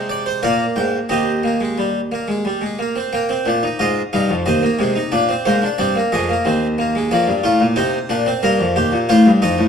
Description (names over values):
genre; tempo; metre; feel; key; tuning
classical, baroque-style 4-part fugue for harpsichord; 90 BPM; 3/4; straight; Eb major; A4 = 438 Hz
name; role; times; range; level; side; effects
harpsichord; solo; 0.0-9.7 s; Eb2 to G5; -15 LUFS; equal; none
room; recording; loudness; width
moderate recital hall reverb, RT60 1.3 s; none; -15 LUFS; side -7 dB against mid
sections
0.0-3.1 A section; 3.1-9.7 B section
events
none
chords
0.4 Bb7; 1.1 Eb; 3.1 Eb/Bb; 4.5 Ab/Eb; 5.1 Bb7; 6.5 Eb5; 7.1 Bb/F; 8.4 Eb; 9.1 F7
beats
0.43 | 1.10 1.77 2.45 | 3.13 3.80 4.46 | 5.13 5.79 6.45 | 7.11 7.77 8.43 | 9.09